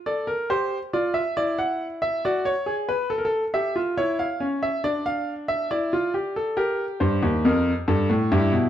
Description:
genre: classical, baroque-style 4-part fugue for grand piano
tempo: 69 BPM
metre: 4/4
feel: straight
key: unclear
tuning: A4 = 440 Hz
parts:
  - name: clear baby grand piano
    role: solo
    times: 0.1-8.7 s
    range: Eb2 to F#5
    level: -22 LUFS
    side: equal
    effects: none
room: moderate stone room reverb, RT60 1.3 s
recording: dark, warm production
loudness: -22 LUFS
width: side -10 dB against mid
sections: 0.0-8.7 A section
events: none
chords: 0.0 Dm; 1.4 E7; 3.1 A; 4.8 Dm; 6.6 Gm

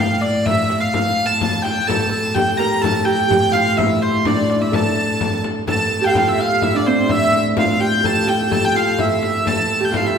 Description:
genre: medieval dance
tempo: 127 BPM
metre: 2/4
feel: straight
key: A minor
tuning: A4 = 440 Hz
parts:
  - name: bright hurdy-gurdy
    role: melody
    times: 0.0-10.2 s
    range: C5 to Bb5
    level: -18 LUFS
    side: right 1 dB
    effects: none
  - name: rich viola da gamba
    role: drone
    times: 0.0-10.2 s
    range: A2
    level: -23 LUFS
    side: equal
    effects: none
  - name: frame drum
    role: percussion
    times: 0.2-10.2 s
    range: none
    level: -23 LUFS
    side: left 3 dB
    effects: none
  - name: Celtic harp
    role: second line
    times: 1.9-10.2 s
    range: C4 to Bb4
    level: -21 LUFS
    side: right 1 dB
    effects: none
room: wet recital hall reverb, RT60 1.8 s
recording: recorded in a church or concert hall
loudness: -15 LUFS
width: side -7 dB against mid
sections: 0.0-5.7 A section; 5.7-10.2 B section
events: none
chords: none

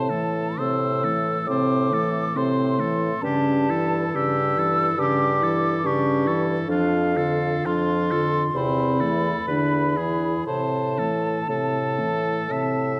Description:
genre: classical, slow romantic movement for wind quintet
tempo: 57-74 BPM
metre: 4/4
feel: rubato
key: A minor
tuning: A4 = 441 Hz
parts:
  - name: hollow concert flute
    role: melody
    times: 0.0-13.0 s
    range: F5 to E6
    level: -29 LUFS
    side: equal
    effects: none
  - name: clear oboe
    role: second line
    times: 0.0-13.0 s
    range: F4 to E5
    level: -33 LUFS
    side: equal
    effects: none
  - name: clear clarinet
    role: accompaniment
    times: 0.0-13.0 s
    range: A3 to F4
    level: -31 LUFS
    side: equal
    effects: none
  - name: dark French horn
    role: accompaniment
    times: 0.0-13.0 s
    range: C3 to F3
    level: -30 LUFS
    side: equal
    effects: none
  - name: warm bassoon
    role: bass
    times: 0.0-13.0 s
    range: E2 to A2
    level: -28 LUFS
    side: equal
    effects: none
room: moderate scoring stage reverb, RT60 1.6 s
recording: dark, warm production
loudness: -23 LUFS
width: mono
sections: 0.0-13.0 A section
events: none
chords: 0.0 Am; 3.2 A7/G; 6.7 Dm/F; 8.5 Am/E; 9.5 E7; 10.5 Am

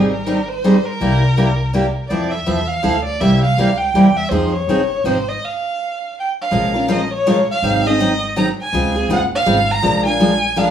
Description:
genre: acoustic string swing (jazz manouche)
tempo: 163 BPM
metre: 3/4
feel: swing 61% on 8ths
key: F minor, Bb minor from 6.5 s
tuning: A4 = 437 Hz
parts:
  - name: warm violin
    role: melody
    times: 0.0-10.7 s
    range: Ab4 to Bb5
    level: -19 LUFS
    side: right 1 dB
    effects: none
  - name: picked steel-string acoustic guitar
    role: accompaniment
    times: 0.0-10.7 s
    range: C3 to Bb4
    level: -16 LUFS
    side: equal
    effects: none
  - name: upright bass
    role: bass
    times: 0.0-10.7 s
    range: Gb1 to F2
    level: -21 LUFS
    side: equal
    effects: none
room: wet studio reverb, RT60 0.6 s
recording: band playing live in one room, studio ambience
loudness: -14 LUFS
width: side -9 dB against mid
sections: 0.0-6.5 A section; 6.5-10.7 B section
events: stop 5.4-6.5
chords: 0.0 Abmaj7; 1.0 C7; 2.1 Fmaj7; 3.2 C7; 4.3 Fm7; 6.5 Bbm7; 7.6 Ab7; 8.7 Dbmaj7; 9.8 Bb7

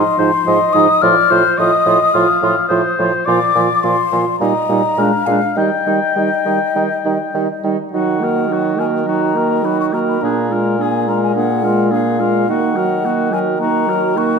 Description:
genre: quick classical-period movement for wind quintet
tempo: 106 BPM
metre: 4/4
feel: straight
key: Eb major, Eb minor from 7.9 s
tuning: A4 = 441 Hz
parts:
  - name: mellow hollow concert flute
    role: melody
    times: 0.0-14.4 s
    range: Eb5 to F6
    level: -18 LUFS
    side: left 7 dB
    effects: none
  - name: warm oboe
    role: second line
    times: 0.0-14.4 s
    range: Gb4 to G5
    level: -20 LUFS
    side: left 3 dB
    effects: none
  - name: warm clarinet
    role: accompaniment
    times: 0.0-14.4 s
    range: D4 to Gb4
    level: -20 LUFS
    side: right 8 dB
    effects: none
  - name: warm bassoon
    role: bass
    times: 0.0-14.4 s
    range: Ab2 to Eb3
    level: -20 LUFS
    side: right 3 dB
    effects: none
  - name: mellow French horn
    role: accompaniment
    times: 0.2-14.4 s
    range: F3 to Bb3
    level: -21 LUFS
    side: equal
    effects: none
room: wet recital hall reverb, RT60 1.5 s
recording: none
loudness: -13 LUFS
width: side -5 dB against mid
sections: 0.0-7.9 A section; 7.9-14.4 B section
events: none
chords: 0.0 Fm7/Ab; 1.0 F7/A; 3.3 Bb; 4.4 Eb/Bb; 5.0 Bb7; 5.6 Eb; 7.9 Ebm; 10.2 Bb7; 12.5 Ebm

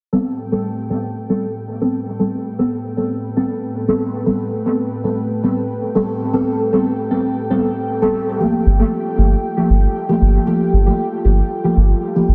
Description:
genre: techno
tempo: 116 BPM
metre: 4/4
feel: straight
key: A minor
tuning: A4 = 439 Hz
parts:
  - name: dark analog pad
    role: sustained chords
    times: 0.1-12.3 s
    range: A3 to G5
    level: -27 LUFS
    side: equal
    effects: chorus
  - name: deep mellow chord stab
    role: stabs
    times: 0.1-12.3 s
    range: F3 to A4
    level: -20 LUFS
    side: equal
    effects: chorus, phaser, dub echo
  - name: soft dub sub bass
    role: bass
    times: 8.7-12.3 s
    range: G1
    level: -15 LUFS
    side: equal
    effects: tube saturation
room: moderate lush hall reverb, RT60 2.7 s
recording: dense, heavily limited modern master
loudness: -18 LUFS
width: mono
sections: 0.1-12.3 A section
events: filter sweep on synth stab 0.1-12.3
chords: 0.1 Am9; 8.4 Gm9

